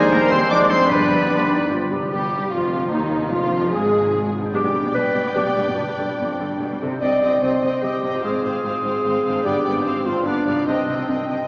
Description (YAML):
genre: classical, dramatic, fast romantic movement for symphony orchestra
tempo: 148 BPM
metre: 3/4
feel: straight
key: C minor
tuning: A4 = 440 Hz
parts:
  - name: warm symphonic violin section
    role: melody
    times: 0.0-11.5 s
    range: Eb4 to D6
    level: -28 LUFS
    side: equal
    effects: none
  - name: bright oboe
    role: second line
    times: 0.0-1.7 s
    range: Ab4 to D5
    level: -24 LUFS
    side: equal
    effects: none
  - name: bright small flute group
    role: second line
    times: 0.0-1.9 s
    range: C5 to D5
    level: -26 LUFS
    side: equal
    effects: none
  - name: dark chamber violin section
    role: second line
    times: 0.0-11.5 s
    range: Eb4 to Eb5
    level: -26 LUFS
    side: equal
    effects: none
  - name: warm clarinet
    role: second line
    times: 0.0-11.5 s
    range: C4 to D5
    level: -22 LUFS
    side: equal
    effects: none
  - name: rich studio viola section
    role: accompaniment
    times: 0.0-11.5 s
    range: D3 to D4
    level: -27 LUFS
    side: equal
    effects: none
  - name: warm bassoon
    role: accompaniment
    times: 0.0-1.9 s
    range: G3 to Ab3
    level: -28 LUFS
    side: equal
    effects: none
  - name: dark French horn section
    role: sustained chords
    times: 0.0-1.9 s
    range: G3 to Eb4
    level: -25 LUFS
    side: equal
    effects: none
  - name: concert harp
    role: arpeggios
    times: 0.0-11.5 s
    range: G2 to B5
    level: -28 LUFS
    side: equal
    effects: none
  - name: bright trumpet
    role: stabs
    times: 0.0-1.9 s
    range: C5 to D5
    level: -24 LUFS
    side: equal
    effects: none
  - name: rich symphonic cello section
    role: bass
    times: 0.1-11.4 s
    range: Eb2 to C3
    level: -29 LUFS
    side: equal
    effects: none
  - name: rich symphonic double bass section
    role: bass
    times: 0.1-11.4 s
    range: F1 to Eb2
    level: -30 LUFS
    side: equal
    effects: none
  - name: timpani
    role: percussion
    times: 0.9-1.5 s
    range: G2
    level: -34 LUFS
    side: equal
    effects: none
room: wet church reverb, RT60 3.4 s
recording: recorded in a church or concert hall, small speaker sound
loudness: -17 LUFS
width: side -30 dB against mid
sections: 0.0-2.1 A section; 2.1-11.5 B section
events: none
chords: 0.0 Cm/Eb; 0.5 Dm7b5/F; 0.9 G; 2.1 Cm; 3.3 Dm7b5/F; 4.5 G/B; 5.8 G; 7.0 Cm; 8.2 Fm/Ab; 9.5 G; 9.9 Ab6; 10.3 G7; 10.7 Cm